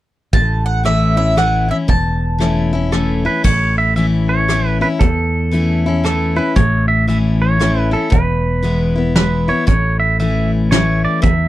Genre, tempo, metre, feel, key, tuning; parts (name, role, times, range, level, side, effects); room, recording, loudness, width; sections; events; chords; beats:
honky-tonk and classic country; 116 BPM; 3/4; swing 63% on 8ths; A major; A4 = 440 Hz
mandolin; melody; 0.3-3.2 s; E5 to A5; -18 LUFS; right 1 dB
picked steel-string acoustic guitar; accompaniment; 0.3-11.5 s; E2 to E4; -18 LUFS; left 3 dB
fingered electric bass; bass; 0.3-11.5 s; E1 to E2; -18 LUFS; right 1 dB
soft brush drum kit; drums; 0.3-11.4 s; crash cymbal, hi-hat, kick drum, rim click, snare drum; -16 LUFS; right 1 dB
pedal steel guitar; second line; 2.9-11.5 s; A4 to E5; -19 LUFS; right 3 dB
light reverb; -13 LUFS; side -14 dB against mid
0.3-3.4 A section; 3.4-11.5 B section
pedal steel guitar solo 3.4-11.5
0.3 A; 8.1 E; 9.7 A
| 0.33 0.85 1.37 | 1.89 2.41 2.93 | 3.44 3.96 4.48 | 5.00 5.52 6.04 | 6.56 7.08 7.60 | 8.12 8.64 9.16 | 9.68 10.20 10.72 | 11.24